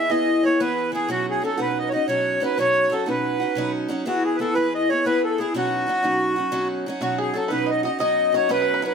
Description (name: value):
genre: celtic folk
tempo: 121 BPM (dotted quarters)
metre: 9/8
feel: straight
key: B mixolydian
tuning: A4 = 440 Hz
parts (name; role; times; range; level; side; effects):
- accordion; melody; 0.0-8.9 s; F#4 to E5; -23 LUFS; right 2 dB; plate reverb
- breathy mellow wooden flute; second line; 0.0-8.9 s; F#4 to E5; -27 LUFS; left 6 dB; none
- picked steel-string acoustic guitar; accompaniment; 0.0-8.9 s; B2 to G#4; -24 LUFS; equal; none
- bluegrass banjo; second line; 7.0-8.9 s; F#4 to D#5; -29 LUFS; right 3 dB; none
room: moderate studio reverb, RT60 0.7 s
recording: none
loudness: -20 LUFS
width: side -6 dB against mid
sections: 0.0-7.0 A section; 7.0-8.9 A section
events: none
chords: 0.0 E; 1.1 Badd9; 4.1 E; 5.5 Badd9